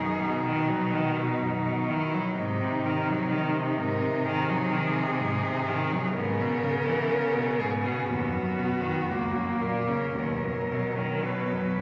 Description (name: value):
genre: classical, lyrical piece for cello ensemble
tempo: 55-64 BPM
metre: 4/4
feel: rubato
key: B major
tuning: A4 = 442 Hz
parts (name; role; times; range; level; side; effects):
- rich cello; melody; 0.0-11.8 s; D#4 to B4; -34 LUFS; equal; none
- rich cello; second line; 0.0-11.8 s; F#3 to D#4; -34 LUFS; equal; none
- bright cello; accompaniment; 0.0-11.8 s; C#2 to F#3; -32 LUFS; equal; none
- warm cello; bass; 0.0-11.8 s; F#2 to C#3; -36 LUFS; equal; none
room: wet concert hall reverb, RT60 2.4 s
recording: none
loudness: -28 LUFS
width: mono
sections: 0.0-11.8 A section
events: none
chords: 0.0 B/F#; 2.4 G#7; 6.1 C#m7/G#; 8.1 B/D#; 9.1 F#/C#; 10.2 B/D#